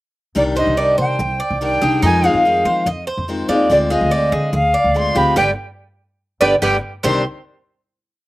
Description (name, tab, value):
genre	latin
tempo	144 BPM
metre	4/4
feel	straight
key	C harmonic minor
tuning	A4 = 440 Hz
part	picked steel-string acoustic guitar	accompaniment	0.3-7.2 s	C3 to G4	-20 LUFS	left 3 dB	none
part	jazz flute	melody	0.4-7.2 s	D5 to C6	-18 LUFS	equal	none
part	upright bass	bass	0.4-7.2 s	G1 to F3	-22 LUFS	equal	none
part	Cuban tres	arpeggios	0.6-7.2 s	C4 to Eb5	-20 LUFS	right 2 dB	none
room	little or no reverb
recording	recorded outdoors, with no room sound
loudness	-14 LUFS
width	side -17 dB against mid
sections	0.4-7.0 A section; 7.0-8.3 final chord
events	band accent 5.4-7.0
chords	0.4 Cmadd9; 2.0 Fm7; 3.7 Dm7b5; 5.4 G; 7.0 Cmadd9